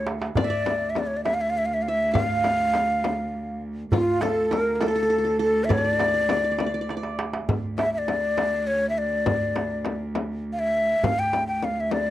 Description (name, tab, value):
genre	Arabic maqam ensemble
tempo	68 BPM (dotted quarters)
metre	6/8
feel	straight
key	D maqam nahawand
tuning	A4 = 439 Hz
part	breathy ney	melody	0.0-12.1 s	F4 to G5	-23 LUFS	left 1 dB	none
part	qanun	second line	0.0-8.0 s	F4 to F5	-30 LUFS	right 5 dB	none
part	rich cello	drone	0.0-12.1 s	D2	-31 LUFS	right 1 dB	none
part	darbuka	percussion	0.1-12.1 s	none	-29 LUFS	right 2 dB	none
part	frame drum	percussion	0.4-12.1 s	none	-29 LUFS	left 5 dB	none
room	little or no reverb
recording	dry, close 1970s-style studio recording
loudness	-22 LUFS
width	side -14 dB against mid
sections	0.0-7.5 A section; 7.5-12.1 B section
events	drum fill 0.0-0.4, 6.9-7.5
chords	none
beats	| 0.38 1.26 | 2.15 3.04 | 3.93 4.82 | 5.71 6.60 | 7.49 8.37 | 9.26 10.15 | 11.04 11.92